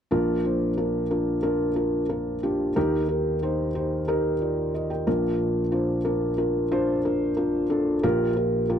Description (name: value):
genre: pop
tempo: 91 BPM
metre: 4/4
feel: straight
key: Bb major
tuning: A4 = 440 Hz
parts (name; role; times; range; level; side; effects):
- felt-muted upright piano; accompaniment; 0.1-8.8 s; Bb1 to G5; -22 LUFS; equal; none
room: light reverb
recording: dry, close 1970s-style studio recording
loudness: -22 LUFS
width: side -9 dB against mid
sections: 0.1-8.8 A section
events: none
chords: 0.1 Bb; 2.8 Eb; 5.1 Bb; 8.0 Gm7/Bb